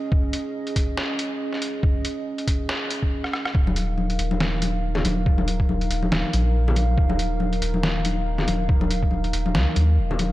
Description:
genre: deep dubstep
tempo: 140 BPM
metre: 4/4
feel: swing 57% on 16ths, half-time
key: unclear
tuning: A4 = 440 Hz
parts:
  - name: dark analog pad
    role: sustained chords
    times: 0.0-10.3 s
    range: Db4 to F5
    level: -29 LUFS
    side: right 1 dB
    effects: wide subtle chorus
  - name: electronic kick drum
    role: drums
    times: 0.1-9.1 s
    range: none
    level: -21 LUFS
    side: equal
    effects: none
  - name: trip hop sampler-style drum kit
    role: drums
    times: 0.3-10.3 s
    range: hi-hat, rim click, snare drum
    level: -28 LUFS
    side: equal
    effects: high-pass filter on hats, high-pass filter on snare
  - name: soft dub sub bass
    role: bass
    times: 3.5-10.3 s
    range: Eb1 to Eb2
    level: -23 LUFS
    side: equal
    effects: none
  - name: congas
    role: percussion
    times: 3.7-10.3 s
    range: none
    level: -27 LUFS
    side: left 3 dB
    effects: dub echo
room: light reverb, digital ambience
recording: dark, warm production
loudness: -20 LUFS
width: side -16 dB against mid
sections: 0.0-3.5 A section; 3.5-10.3 B section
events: build-up 0.0-3.5; drum fill 3.2-3.5; drop 3.5-10.3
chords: 0.0 Db5; 3.5 Eb5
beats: | 0.12 0.55 0.98 1.41 | 1.83 2.26 2.69 3.12 | 3.55 3.98 4.41 4.83 | 5.26 5.69 6.12 6.55 | 6.98 7.41 7.83 8.26 | 8.69 9.12 9.55 9.98

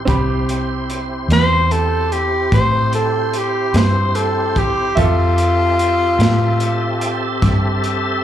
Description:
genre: slow blues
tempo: 49 BPM (dotted quarters)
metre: 12/8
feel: straight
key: A minor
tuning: A4 = 439 Hz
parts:
  - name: bright concert grand piano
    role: accompaniment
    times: 0.0-8.2 s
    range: C4 to B5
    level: -25 LUFS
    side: right 5 dB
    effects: slapback echo
  - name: tonewheel organ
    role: sustained chords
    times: 0.0-8.2 s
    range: C4 to E5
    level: -23 LUFS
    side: equal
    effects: slow rotary speaker, chorus vibrato
  - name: vintage muted fingered electric bass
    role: bass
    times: 0.0-8.2 s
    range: C2 to A2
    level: -18 LUFS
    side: equal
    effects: none
  - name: crunchy breakbeat drum kit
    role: drums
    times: 0.1-8.0 s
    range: hi-hat, kick drum, snare drum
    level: -22 LUFS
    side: equal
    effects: none
  - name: breathy tenor saxophone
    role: melody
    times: 1.3-7.4 s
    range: F4 to C5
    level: -17 LUFS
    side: left 1 dB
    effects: slapback echo
room: small room ambience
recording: live gig heard through the venue's PA, club reverb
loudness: -14 LUFS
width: side -10 dB against mid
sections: 0.0-8.2 A section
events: none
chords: 0.0 Am7; 5.0 Fmaj7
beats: | 0.07 1.29 2.52 3.74 | 4.97 6.20 7.43

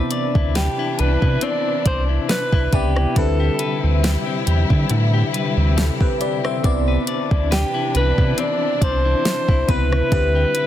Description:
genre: contemporary R&B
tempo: 69 BPM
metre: 4/4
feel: swing 54% on 16ths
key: C major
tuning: A4 = 440 Hz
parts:
  - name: FM electric piano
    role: accompaniment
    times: 0.0-10.7 s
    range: C3 to E5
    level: -26 LUFS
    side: equal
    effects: chorus, phaser
  - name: warm studio string section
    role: sustained chords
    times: 0.0-10.7 s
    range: C3 to E4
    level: -27 LUFS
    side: left 2 dB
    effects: none
  - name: clean electric guitar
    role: arpeggios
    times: 0.0-10.7 s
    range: D3 to D5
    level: -26 LUFS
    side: left 8 dB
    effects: tremolo
  - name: smooth R&B drum kit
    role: drums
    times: 0.1-10.7 s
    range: hi-hat, kick drum, rim click, snare drum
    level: -20 LUFS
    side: equal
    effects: soft clipping on snare
  - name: sub bass with octave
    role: bass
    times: 0.4-10.5 s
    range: C2 to D3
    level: -19 LUFS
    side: equal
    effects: none
  - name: breathy alto saxophone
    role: melody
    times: 0.6-10.7 s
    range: G4 to D5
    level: -22 LUFS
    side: right 1 dB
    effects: ping-pong delay
room: digital ambience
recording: dense, heavily limited modern master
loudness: -16 LUFS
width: side -12 dB against mid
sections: 0.0-10.7 A section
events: none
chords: 0.0 Cmaj9; 3.2 D13sus4; 6.6 Cmaj9; 10.1 D13sus4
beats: 0.55 1.42 2.29 | 3.16 4.03 4.90 5.77 | 6.64 7.51 8.38 9.25 | 10.12

